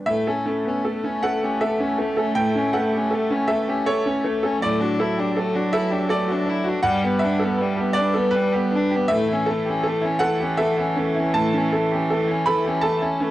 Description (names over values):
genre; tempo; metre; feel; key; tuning
neoclassical piano and strings; 53 BPM (dotted quarters); 6/8; rubato; unclear; A4 = 440 Hz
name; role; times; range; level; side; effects
bright grand piano; accompaniment; 0.0-13.3 s; G2 to B5; -22 LUFS; right 1 dB; cassette tape
rich violin; melody; 0.1-13.3 s; G3 to E4; -24 LUFS; left 3 dB; cassette tape
rich cello; second line; 0.1-13.3 s; E3 to A3; -26 LUFS; right 3 dB; cassette tape
room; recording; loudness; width
moderate small room reverb, RT60 0.5 s; home recording on cassette; -19 LUFS; side -15 dB against mid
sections
0.1-13.3 A section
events
none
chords
0.1 A; 4.6 Dadd9/A; 6.8 G; 9.1 A